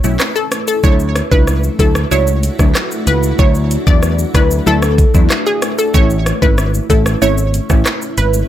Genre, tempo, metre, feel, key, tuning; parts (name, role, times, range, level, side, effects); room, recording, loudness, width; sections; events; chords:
dancehall; 94 BPM; 4/4; straight; A4 = 436 Hz
wavetable chord stab; accompaniment; 0.0-7.9 s; F#3 to E4; -19 LUFS; equal
granular cloud pad; sustained chords; 0.0-8.5 s; A3 to F#4; -24 LUFS; left 1 dB; built-in reverb, sidechain pumping
picked electric bass; bass; 0.0-8.4 s; G#1 to E2; -15 LUFS; equal
afro-pop drum kit; drums; 0.0-8.5 s; handclaps, hi-hat, kick drum, rim click, shaker; -14 LUFS; equal
analog pluck; melody; 0.4-8.3 s; G#4 to D5; -18 LUFS; equal; chorus, digital delay
little or no reverb; -11 LUFS; side -12 dB against mid
0.0-8.5 A section
0.0 A; 0.8 Dadd9; 5.9 A